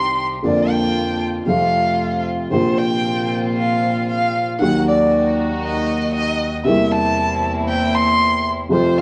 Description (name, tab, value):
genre	tango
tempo	116 BPM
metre	4/4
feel	rubato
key	Bb major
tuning	A4 = 439 Hz
part	warm violin	second line	0.0-9.0 s	C5 to C6	-22 LUFS	equal	none
part	dark upright piano	accompaniment	0.0-9.0 s	Bb1 to G4	-22 LUFS	equal	none
part	warm studio string section	stabs	0.0-9.0 s	A3 to G4	-27 LUFS	equal	none
part	clear double bass	bass	0.0-9.0 s	Bb1 to F2	-32 LUFS	equal	none
room	wet studio reverb, RT60 0.6 s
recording	none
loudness	-18 LUFS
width	mono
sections	0.0-9.0 A section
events	violin solo 0.0-9.0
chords	0.4 Bb/F; 1.5 F; 2.5 Bbsus2; 4.6 Ebm; 6.7 C7/E